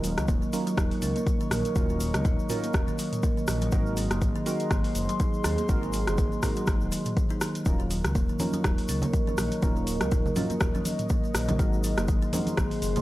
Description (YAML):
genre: afro house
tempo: 122 BPM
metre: 4/4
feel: swing 56% on 16ths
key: Eb dorian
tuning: A4 = 440 Hz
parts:
  - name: dark analog pad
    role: sustained chords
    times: 0.0-13.0 s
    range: Ab4 to Db6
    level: -34 LUFS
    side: equal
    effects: chorus, phaser, sidechain pumping
  - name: kalimba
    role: arpeggios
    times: 0.0-13.0 s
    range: Eb3 to Eb4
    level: -31 LUFS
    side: equal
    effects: sidechain pumping, tape echo
  - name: deep mellow chord stab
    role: stabs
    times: 0.0-13.0 s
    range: Gb3 to Bb4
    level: -37 LUFS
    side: right 3 dB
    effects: chorus, cassette tape, sidechain pumping, tape echo
  - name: smooth gliding synth bass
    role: bass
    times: 0.0-12.9 s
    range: Eb1 to Eb2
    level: -31 LUFS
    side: equal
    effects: sidechain pumping
  - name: afro-pop drum kit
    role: drums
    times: 0.0-13.0 s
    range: hi-hat, rim click, toms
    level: -34 LUFS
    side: equal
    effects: none
  - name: egg shaker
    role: percussion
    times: 0.0-13.0 s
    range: none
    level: -42 LUFS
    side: left 3 dB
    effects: none
  - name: electronic kick drum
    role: drums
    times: 0.3-12.7 s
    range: none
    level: -26 LUFS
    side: equal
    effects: none
  - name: congas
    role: percussion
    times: 8.4-13.0 s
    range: none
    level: -32 LUFS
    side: right 1 dB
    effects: none
room: digital ambience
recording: dry, gritty hardware recording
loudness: -24 LUFS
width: side -16 dB against mid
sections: 0.0-13.0 A section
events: none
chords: 0.0 Ebm7; 3.7 Ab7; 7.7 Ebm7; 11.6 Ab7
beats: 0.28 0.77 1.27 | 1.76 2.25 2.74 3.23 | 3.73 4.22 4.71 5.20 | 5.69 6.18 6.68 7.17 | 7.66 8.15 8.64 9.13 | 9.63 10.12 10.61 11.10 | 11.59 12.09 12.58